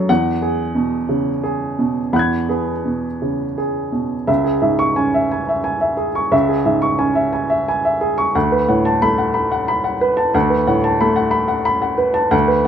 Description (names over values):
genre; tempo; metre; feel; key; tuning
neoclassical minimalist piano; 89 BPM; 3/4; rubato; unclear; A4 = 441 Hz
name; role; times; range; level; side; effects
warm upright piano; solo; 0.0-12.7 s; C#2 to G#6; -15 LUFS; equal; none
room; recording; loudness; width
moderate stone room reverb, RT60 1.0 s; band playing live in one room; -15 LUFS; side -8 dB against mid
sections
0.0-4.3 A section; 4.3-12.7 B section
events
none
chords
0.1 Eadd9; 4.3 C#m; 8.3 Bm7/D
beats
| 0.09 0.75 1.43 | 2.13 2.84 3.57 | 4.28 4.97 5.65 | 6.32 7.00 7.67 | 8.35 9.02 9.68 | 10.35 11.01 11.66 | 12.33